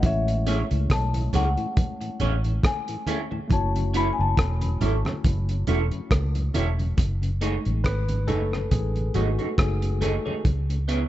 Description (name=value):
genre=lovers rock reggae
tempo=69 BPM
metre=4/4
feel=swing 56% on 16ths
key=F# dorian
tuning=A4 = 441 Hz
part: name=marimba with medium hard mallets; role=melody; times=0.0-5.5 s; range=E5 to B5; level=-30 LUFS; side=left 4 dB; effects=tape echo
part: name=tine electric piano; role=accompaniment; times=0.0-10.5 s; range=G#3 to C#5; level=-33 LUFS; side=left 3 dB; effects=medium stereo tremolo
part: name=vintage muted fingered electric bass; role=bass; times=0.0-11.0 s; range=E1 to C#2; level=-24 LUFS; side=equal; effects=none
part: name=cloth-damped thuddy drum kit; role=drums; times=0.0-11.1 s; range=hi-hat, kick drum, rim click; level=-25 LUFS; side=equal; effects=none
part: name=congas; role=percussion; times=0.0-10.7 s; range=none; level=-33 LUFS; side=right 3 dB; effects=none
part: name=mellow tonewheel organ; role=accompaniment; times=0.3-11.0 s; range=F#2 to G#4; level=-36 LUFS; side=left 2 dB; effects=slow rotary speaker
part: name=electric guitar through a small old amp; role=stabs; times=0.5-11.0 s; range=A3 to C#5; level=-31 LUFS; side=right 5 dB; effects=phaser
room=small room ambience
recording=dark, warm production, nothing above 7.8 kHz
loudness=-22 LUFS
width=side -14 dB against mid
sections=0.0-7.0 A section; 7.0-11.1 B section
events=tine electric piano solo 7.0-11.1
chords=0.0 Amaj7; 3.5 F#m7; 7.0 F#m69; 10.5 C#m7